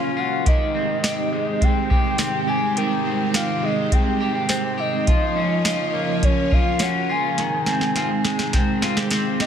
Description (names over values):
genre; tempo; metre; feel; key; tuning
dream pop; 104 BPM; 4/4; straight; Ab major; A4 = 440 Hz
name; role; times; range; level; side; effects
soft octave-layered synth lead; melody; 0.0-9.5 s; Db5 to Ab5; -25 LUFS; right 1 dB; chorus, tremolo, tape echo
string machine, cellos; sustained chords; 0.0-9.5 s; F3 to Db5; -25 LUFS; right 2 dB; ensemble chorus
electric guitar at the edge of break-up; arpeggios; 0.0-9.5 s; Eb3 to G4; -24 LUFS; left 2 dB; lush chorus, tape echo
small celesta; texture; 0.0-7.6 s; Bb4 to Db5; -38 LUFS; right 4 dB; none
soft vintage rhythm box; drums; 0.5-9.5 s; hi-hat, kick drum, snare drum, tambourine; -21 LUFS; equal; none
room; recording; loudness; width
moderate concert hall reverb, RT60 1.9 s; none; -18 LUFS; side -8 dB against mid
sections
0.0-9.5 A section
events
drum fill 7.4-9.5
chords
0.5 Abmaj7; 5.1 Gbmaj13/F; 7.4 Abmaj7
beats
| 0.46 1.03 1.61 2.19 | 2.77 3.34 3.92 4.50 | 5.07 5.65 6.23 6.80 | 7.38 7.96 8.54 9.11